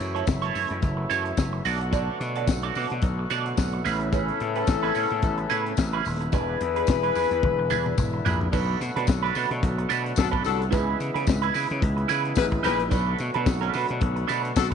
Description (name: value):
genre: disco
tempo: 109 BPM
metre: 4/4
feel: swing 56% on 16ths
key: B dorian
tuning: A4 = 437 Hz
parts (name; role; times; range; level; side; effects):
- electric guitar at the edge of break-up; accompaniment; 0.0-14.7 s; C#4 to D5; -28 LUFS; right 11 dB; wah
- overdriven tonewheel organ; sustained chords; 0.0-14.7 s; C#3 to F#4; -32 LUFS; equal; slow rotary speaker
- gritty slap bass; bass; 0.0-14.7 s; D#1 to C#3; -28 LUFS; equal; overdrive
- tight funk drum kit; drums; 0.0-14.7 s; crash cymbal, hi-hat, kick drum, snare drum, toms; -26 LUFS; left 3 dB; none
- tambourine; percussion; 0.0-14.7 s; none; -42 LUFS; left 12 dB; none
- warm horn section; stabs; 4.1-14.7 s; C#4 to B4; -27 LUFS; left 10 dB; none
room: moderate echo chamber reverb, RT60 1.8 s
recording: 1960s-style stereo with parts hard left and right, nothing above 10.7 kHz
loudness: -22 LUFS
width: side -7 dB against mid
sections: 0.0-8.5 A section; 8.5-14.7 B section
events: drum fill 7.4-8.5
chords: 0.0 F#m7; 1.6 Bm7; 3.8 Amaj9; 6.3 E7; 8.5 Bm7; 10.7 C#m7; 12.9 Bm7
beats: 0.27 0.82 1.37 | 1.92 2.47 3.02 3.57 | 4.12 4.67 5.22 5.78 | 6.33 6.88 7.43 7.98 | 8.53 9.08 9.62 10.17 | 10.72 11.27 11.82 12.37 | 12.92 13.47 14.02 14.57